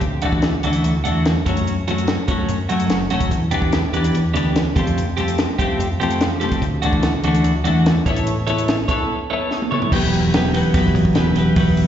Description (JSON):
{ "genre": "indie rock", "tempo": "146 BPM", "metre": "4/4", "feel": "straight", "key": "E dorian", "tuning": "A4 = 438 Hz", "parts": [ { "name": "twelve-string electric guitar", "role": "riff", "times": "0.0-11.9 s", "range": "E3 to C#5", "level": "-18 LUFS", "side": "equal", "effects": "double-tracked left and right, slapback echo" }, { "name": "picked electric bass", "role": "bass", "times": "0.0-11.9 s", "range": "E1 to F#2", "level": "-22 LUFS", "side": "equal", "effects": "none" }, { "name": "compact cocktail drum kit", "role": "drums", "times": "0.0-11.9 s", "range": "crash cymbal, hi-hat, kick drum, snare drum, toms", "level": "-22 LUFS", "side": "equal", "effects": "slapback echo" } ], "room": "light reverb", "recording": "live gig heard through the venue's PA, recital hall reverb, nothing above 7.7 kHz", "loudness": "-16 LUFS", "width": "side -10 dB against mid", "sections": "0.0-9.9 A section; 9.9-11.9 B section", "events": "break 9.1-9.9; drum fill 9.5-9.9", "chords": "0.0 Dadd9; 1.5 F#m; 3.3 Em7; 4.8 Fadd9; 6.6 Dadd9; 8.1 Aadd9; 9.9 Emadd9" }